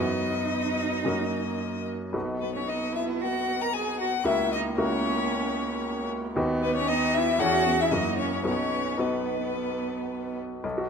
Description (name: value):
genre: quick classical-period movement for piano quartet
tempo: 113 BPM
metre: 4/4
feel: straight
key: B major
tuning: A4 = 445 Hz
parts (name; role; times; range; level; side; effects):
- rich violin; melody; 0.0-10.4 s; B4 to A#5; -30 LUFS; left 9 dB; none
- rich cello; second line; 0.0-10.9 s; B3 to A#4; -31 LUFS; right 8 dB; none
- bright grand piano; accompaniment; 0.0-10.9 s; B1 to B4; -30 LUFS; left 1 dB; none
- rich viola; accompaniment; 0.0-10.4 s; A#3 to C#4; -32 LUFS; right 3 dB; none
room: moderate concert hall reverb, RT60 2.2 s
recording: close, detailed microphones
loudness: -25 LUFS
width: side -6 dB against mid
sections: 0.0-10.6 A section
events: none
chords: 0.0 B/F#; 1.1 F#; 2.1 B; 4.3 F#7/C#; 6.4 B/D#; 7.4 C#m/E; 7.9 F#7; 8.5 B